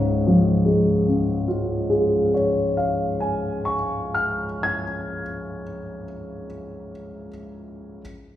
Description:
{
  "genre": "classical",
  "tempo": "36 BPM",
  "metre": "4/4",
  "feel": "rubato",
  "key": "Db major",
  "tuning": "A4 = 441 Hz",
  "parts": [
    { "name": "dark concert grand piano", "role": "accompaniment", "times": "0.0-8.0 s", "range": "Db2 to Ab6", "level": "-21 LUFS", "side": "left 1 dB", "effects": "none" }
  ],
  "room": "wet recital hall reverb, RT60 1.5 s",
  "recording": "heard from further back in the room",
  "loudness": "-20 LUFS",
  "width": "side -12 dB against mid",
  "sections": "0.0-5.8 A section",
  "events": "none",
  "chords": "0.0 Db"
}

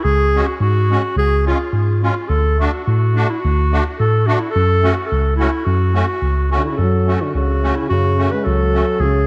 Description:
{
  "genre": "alpine folk, alpine dance band",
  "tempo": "108 BPM",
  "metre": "2/4",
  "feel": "swing 53% on 8ths",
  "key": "F# minor",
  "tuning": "A4 = 438 Hz",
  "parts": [
    { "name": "mellow clarinet", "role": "melody", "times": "0.0-9.3 s", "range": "E4 to B4", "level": "-22 LUFS", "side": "equal", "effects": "diffuse ambient delay" },
    { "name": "mellow tine electric piano", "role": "bass", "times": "0.0-9.3 s", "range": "C#2 to A2", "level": "-19 LUFS", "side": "equal", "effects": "none" },
    { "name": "musette accordion", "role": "accompaniment", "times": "0.3-8.9 s", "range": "G#3 to F#4", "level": "-26 LUFS", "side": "equal", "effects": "none" },
    { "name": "mellow euphonium", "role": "second line", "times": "6.6-9.3 s", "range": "C#3 to G#3", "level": "-23 LUFS", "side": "equal", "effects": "none" }
  ],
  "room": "moderate lush hall reverb, RT60 1.7 s",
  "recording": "dreamy mix soaked in reverb",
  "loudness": "-17 LUFS",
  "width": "mono",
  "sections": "0.0-6.8 A section; 6.8-9.3 A section",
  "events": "none",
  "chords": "0.0 C#sus4; 1.2 C#; 2.3 D; 4.5 F#m"
}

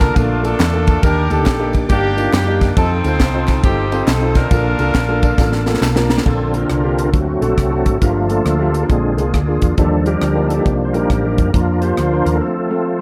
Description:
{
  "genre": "uptempo gospel",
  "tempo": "137 BPM",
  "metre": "4/4",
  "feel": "swing 64% on 8ths",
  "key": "Bb major",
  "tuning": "A4 = 443 Hz",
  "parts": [
    { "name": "clear horn section", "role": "melody", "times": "0.0-5.8 s", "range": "A3 to C5", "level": "-22 LUFS", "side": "equal", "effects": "none" },
    { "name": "clear upright piano", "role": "accompaniment", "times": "0.0-13.0 s", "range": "G2 to Bb5", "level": "-24 LUFS", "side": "equal", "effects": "none" },
    { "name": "bright tonewheel organ", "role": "sustained chords", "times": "0.0-13.0 s", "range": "D3 to Eb6", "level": "-23 LUFS", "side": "equal", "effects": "fast rotary speaker, chorus vibrato" },
    { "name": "hollow-body short-scale fingered electric bass", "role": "bass", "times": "0.0-12.4 s", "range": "G1 to Gb2", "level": "-21 LUFS", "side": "equal", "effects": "none" },
    { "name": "crisp fusion drum kit", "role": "drums", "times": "0.0-12.3 s", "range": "crash cymbal, hi-hat, kick drum, ride cymbal, rim click, snare drum", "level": "-20 LUFS", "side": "equal", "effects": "none" },
    { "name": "handclaps and tambourine", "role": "percussion", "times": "0.0-6.2 s", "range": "none", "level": "-34 LUFS", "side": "equal", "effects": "none" }
  ],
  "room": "light reverb",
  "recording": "none",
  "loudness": "-16 LUFS",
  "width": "mono",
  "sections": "0.0-6.3 A section; 6.3-13.0 B section",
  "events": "upright piano fill 4.9-6.3; drum fill 5.4-6.3; tonewheel organ solo 6.3-13.0; break 12.4-13.0",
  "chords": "0.0 Bbmaj7; 1.0 Ebmaj7; 2.8 F7; 4.5 Bbmaj7; 7.1 D7; 8.0 Gm7; 8.9 Bb7; 9.8 Ebmaj7; 11.5 Bb/F; 12.4 F"
}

